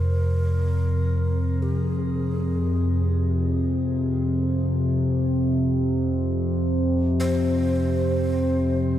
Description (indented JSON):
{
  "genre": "ambient",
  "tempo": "free time",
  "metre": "none",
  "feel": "none",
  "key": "F minor",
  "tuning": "A4 = 440 Hz",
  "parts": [
    { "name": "breathy mellow long shakuhachi", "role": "melody", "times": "0.0-9.0 s", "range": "Ab4 to C5", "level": "-32 LUFS", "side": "equal", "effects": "shimmer reverb, diffuse ambient delay" },
    { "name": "analog drone", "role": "drone", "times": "0.0-9.0 s", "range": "F2 to C3", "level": "-21 LUFS", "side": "equal", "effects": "chorus" },
    { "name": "bronze singing bowl", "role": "texture", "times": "0.0-9.0 s", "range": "C6", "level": "-51 LUFS", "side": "right 1 dB", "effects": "shimmer reverb" }
  ],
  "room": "wet cathedral reverb, RT60 6.0 s",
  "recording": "dark, warm production",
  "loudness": "-21 LUFS",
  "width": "side -11 dB against mid",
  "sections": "0.0-9.0 A section",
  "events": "fade-in on singing bowl 0.0-9.0; fade-in on shakuhachi 0.0-9.0; filter sweep on synth drone 0.0-9.0",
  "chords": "0.0 Fm; 6.6 Bbsus2 (rootless)"
}